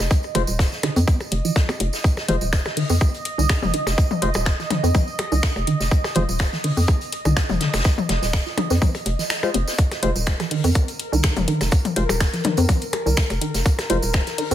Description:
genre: minimal techno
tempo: 124 BPM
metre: 4/4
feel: swing 54% on 16ths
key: F minor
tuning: A4 = 436 Hz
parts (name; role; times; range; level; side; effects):
- hollow knocking FM bass; bass; 0.0-14.5 s; Eb1 to F2; -22 LUFS; equal; sidechain pumping
- vintage drum kit; drums; 0.0-14.5 s; hi-hat, snare drum; -32 LUFS; left 2 dB; high-pass filter on hats, studio reverb, high-pass filter on snare, high-pass filter on room
- electronic percussion blips and toms; percussion; 0.0-14.2 s; none; -28 LUFS; left 4 dB; studio reverb, ping-pong delay
- tambourine; percussion; 0.0-14.5 s; none; -32 LUFS; right 4 dB; none
- bubbling stepped-filter texture; texture; 0.0-14.5 s; Bb4 to Eb5; -30 LUFS; right 2 dB; chorus, built-in reverb, sidechain pumping
- electronic kick drum; drums; 0.1-14.2 s; none; -18 LUFS; equal; studio reverb
- resonant blip pluck; riff; 0.3-14.5 s; Eb3 to F4; -25 LUFS; right 1 dB; phaser, sidechain pumping, tape echo
- percussive organ stab; stabs; 0.3-6.2, 9.4-14.0 s; Ab3 to C5; -27 LUFS; left 4 dB; wide subtle chorus, cassette tape, ping-pong delay
- garage drum kit; drums; 0.3-14.5 s; finger snaps, hi-hat; -27 LUFS; left 1 dB; studio reverb
room: light reverb, small room ambience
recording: none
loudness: -18 LUFS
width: side -11 dB against mid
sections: 0.0-14.5 A section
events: filter sweep on synth arpeggio sound 0.0-14.5; kick drops out 9.3-9.8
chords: 0.0 F5

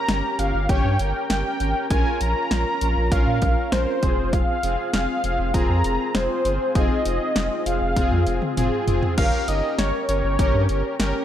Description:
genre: synth-pop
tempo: 99 BPM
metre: 4/4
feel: straight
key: F minor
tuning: A4 = 441 Hz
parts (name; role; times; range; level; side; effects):
- wide unison lead; melody; 0.0-11.2 s; C5 to Bb5; -25 LUFS; equal; none
- analog synth brass; accompaniment; 0.0-11.2 s; C4 to Db5; -26 LUFS; left 1 dB; chorus
- round analog bass; bass; 0.1-11.1 s; F1 to Bb2; -24 LUFS; equal; none
- punchy analog drum machine; drums; 0.1-11.1 s; crash cymbal, hi-hat, kick drum, snare drum, toms; -24 LUFS; equal; none
room: light reverb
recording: none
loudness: -19 LUFS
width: side -10 dB against mid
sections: 0.0-9.2 A section; 9.2-11.2 B section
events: drum fill 8.0-9.2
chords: 0.0 Gdim; 1.9 Bbm; 4.0 Fm; 9.2 Gdim

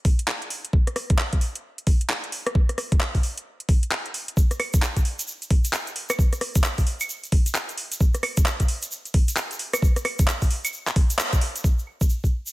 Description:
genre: UK garage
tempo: 132 BPM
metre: 4/4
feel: swing 62% on 16ths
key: none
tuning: none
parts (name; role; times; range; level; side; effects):
- garage drum kit; drums; 0.0-12.0 s; claves, handclaps, hi-hat, rim click; -26 LUFS; equal; low-pass filter on hats, low-pass filter on snare, low-pass filter on cymbals, low-pass filter on perc
- electronic kick drum; drums; 0.1-12.3 s; none; -19 LUFS; equal; none
- egg shaker; percussion; 4.4-12.5 s; none; -32 LUFS; right 1 dB; none
room: digital ambience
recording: none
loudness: -21 LUFS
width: side -19 dB against mid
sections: 0.0-11.6 A section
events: band accent 11.2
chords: none

